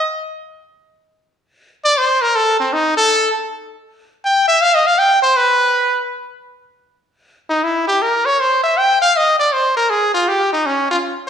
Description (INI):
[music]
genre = jazz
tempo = 159 BPM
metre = 4/4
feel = swing 66% on 8ths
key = unclear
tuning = A4 = 442 Hz
[part]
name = brilliant trumpet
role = solo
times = 0.0-11.0 s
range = C4 to G5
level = -13 LUFS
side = equal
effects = none
[sound]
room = wet large studio reverb, RT60 1.3 s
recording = band playing live in one room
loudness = -13 LUFS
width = side -8 dB against mid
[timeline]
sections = 0.0-6.1 A section; 6.1-11.3 A section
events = trumpet solo 0.0-6.1, 6.1-11.3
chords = none